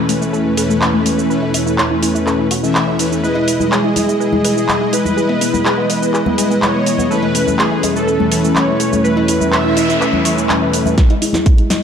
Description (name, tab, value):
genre	progressive house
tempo	124 BPM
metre	4/4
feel	straight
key	unclear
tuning	A4 = 437 Hz
part	warm analog pad	sustained chords	0.0-11.8 s	E2 to D#5	-22 LUFS	right 1 dB	chorus, sidechain pumping
part	analog pluck	arpeggios	0.0-11.8 s	A3 to C#5	-21 LUFS	equal	chorus, phaser, sidechain pumping, ping-pong delay
part	soft supersaw	stabs	0.0-11.8 s	E3 to E5	-17 LUFS	left 2 dB	cassette tape, sidechain pumping, low-pass filter, ping-pong delay
part	house drum kit	drums	0.1-11.8 s	handclaps, hi-hat, shaker, snare drum	-20 LUFS	right 1 dB	sidechain pumping on perc, studio reverb, sidechain pumping on hats
part	soft supersaw	melody	3.2-10.7 s	G#4 to E5	-20 LUFS	right 1 dB	vintage 12-bit sampler grit, sidechain pumping, ping-pong delay
part	cowbell and congas	percussion	3.4-11.8 s	none	-24 LUFS	left 3 dB	sidechain pumping on perc
part	noise sweep	sound effects	9.2-11.0 s	none	-24 LUFS	equal	none
part	plucky analog bass	bass	11.0-11.8 s	E1	-33 LUFS	equal	none
part	electronic kick drum	drums	11.0-11.6 s	none	-10 LUFS	equal	studio reverb
room	moderate lush hall reverb, RT60 1.5 s, digital ambience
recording	dark, warm production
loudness	-12 LUFS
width	side -7 dB against mid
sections	0.0-11.0 A section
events	filter sweep on synth arpeggio sound 0.0-11.0; noise sweep 9.2-11.0; drum fill 11.0-11.8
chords	0.0 Aadd9/E; 3.2 Emaj7; 7.1 Aadd9/E; 11.0 Emaj7